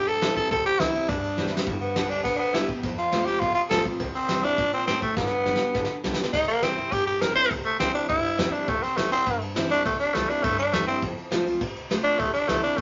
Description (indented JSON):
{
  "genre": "rockabilly",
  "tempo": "205 BPM",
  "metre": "4/4",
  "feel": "straight",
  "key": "C major",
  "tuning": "A4 = 439 Hz",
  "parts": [
    { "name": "growling tenor saxophone", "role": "melody", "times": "0.0-12.8 s", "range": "A3 to C5", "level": "-26 LUFS", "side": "equal", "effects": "none" },
    { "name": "picked steel-string acoustic guitar", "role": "accompaniment", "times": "0.0-12.8 s", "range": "F2 to G4", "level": "-33 LUFS", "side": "equal", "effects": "none" },
    { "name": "upright bass", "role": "bass", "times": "0.0-12.8 s", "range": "E1 to Bb2", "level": "-41 LUFS", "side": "equal", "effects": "none" },
    { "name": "soft brush drum kit", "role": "drums", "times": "0.1-12.8 s", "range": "crash cymbal, kick drum, ride cymbal, snare drum", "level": "-32 LUFS", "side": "equal", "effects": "none" }
  ],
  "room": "moderate studio reverb, RT60 0.6 s",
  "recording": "nothing above 7.5 kHz",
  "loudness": "-25 LUFS",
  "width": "mono",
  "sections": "0.0-6.3 A section; 6.3-12.8 B section",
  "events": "drum fill 1.4, 5.2-6.3; tenor saxophone solo 6.3-12.8",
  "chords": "0.0 C; 1.7 G; 2.8 F; 4.0 C; 5.2 G; 6.3 C; 11.0 F; 12.2 C",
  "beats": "0.22 | 0.51 0.80 1.09 1.38 | 1.67 1.96 2.25 2.54 | 2.83 3.12 3.42 3.71 | 4.00 4.29 4.58 4.87 | 5.17 5.46 5.75 6.04 | 6.34 6.63 6.92 7.21 | 7.51 7.80 8.09 8.39 | 8.68 8.97 9.27 9.56 | 9.85 10.14 10.44 10.73 | 11.02 11.32 11.61 11.90 | 12.20 12.49 12.78"
}